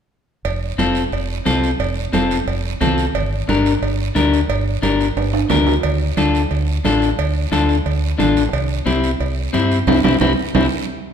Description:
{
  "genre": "latin, cumbia",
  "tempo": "178 BPM",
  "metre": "4/4",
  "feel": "straight",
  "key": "F major",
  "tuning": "A4 = 439 Hz",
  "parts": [
    { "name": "deep dub fingered electric bass", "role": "bass", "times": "0.4-10.7 s", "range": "F1 to G2", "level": "-20 LUFS", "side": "right 1 dB", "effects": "none" },
    { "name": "congas", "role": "percussion", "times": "0.4-10.6 s", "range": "none", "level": "-25 LUFS", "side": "right 4 dB", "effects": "none" },
    { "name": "cowbell and timbales", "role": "percussion", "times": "0.4-10.6 s", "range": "none", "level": "-25 LUFS", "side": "right 7 dB", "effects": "none" },
    { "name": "guiro", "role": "percussion", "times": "0.4-10.6 s", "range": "none", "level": "-32 LUFS", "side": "right 8 dB", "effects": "none" },
    { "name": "electric guitar at the edge of break-up", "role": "accompaniment", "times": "0.8-10.7 s", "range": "C4 to Bb4", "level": "-19 LUFS", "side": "left 4 dB", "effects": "none" }
  ],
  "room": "wet large studio reverb, RT60 1.5 s",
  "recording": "minimal, uncompressed stereo recording",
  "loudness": "-15 LUFS",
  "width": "side -8 dB against mid",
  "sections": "0.5-11.1 A section",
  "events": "drum fill 5.2-5.8, 10.7-11.1; band accent 9.9-11.1",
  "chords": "0.5 F; 3.1 Gm; 5.8 Dm; 8.5 C",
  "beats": "| 0.45 0.79 1.12 1.46 | 1.80 2.13 2.47 2.81 | 3.15 3.48 3.82 4.16 | 4.49 4.83 5.17 5.50 | 5.84 6.18 6.51 6.85 | 7.18 7.52 7.86 8.19 | 8.53 8.87 9.20 9.54 | 9.88 10.21 10.55"
}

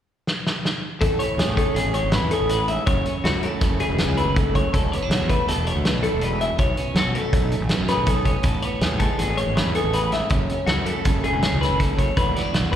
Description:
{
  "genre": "math rock and midwest emo",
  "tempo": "161 BPM",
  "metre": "5/4",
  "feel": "straight",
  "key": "A major",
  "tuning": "A4 = 438 Hz",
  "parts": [
    { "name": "loose indie drum kit", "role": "drums", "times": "0.3-12.8 s", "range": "hi-hat, kick drum, snare drum", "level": "-23 LUFS", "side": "equal", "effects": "none" },
    { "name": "clean electric guitar", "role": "accompaniment", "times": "1.0-12.8 s", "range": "E2 to A4", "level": "-27 LUFS", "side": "right 7 dB", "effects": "slapback echo" },
    { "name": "twelve-string electric guitar", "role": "arpeggios", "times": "1.0-12.8 s", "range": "F#4 to E5", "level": "-25 LUFS", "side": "left 3 dB", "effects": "slapback echo" },
    { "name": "fuzz fingered electric bass", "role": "bass", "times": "1.0-12.8 s", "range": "E1 to B2", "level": "-25 LUFS", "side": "equal", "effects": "overdrive" }
  ],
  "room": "small room reverb",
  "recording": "live gig heard through the venue's PA, recital hall reverb",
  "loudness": "-19 LUFS",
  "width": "side -10 dB against mid",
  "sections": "0.0-1.0 A section; 1.0-12.8 B section",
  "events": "drum fill 0.3-1.0",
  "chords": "0.0 N.C.; 1.0 Amaj9; 2.9 F#m9; 4.7 E9sus4; 6.6 Bsus2; 8.4 Amaj9; 10.3 F#m9; 12.2 E9sus4",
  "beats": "0.27 0.64 | 1.01 1.38 1.75 2.13 2.50 | 2.87 3.24 3.61 3.98 4.36 | 4.73 5.10 5.47 5.84 6.22 | 6.59 6.96 7.33 7.70 8.08 | 8.45 8.82 9.19 9.56 9.94 | 10.31 10.68 11.05 11.43 11.80 | 12.17 12.54"
}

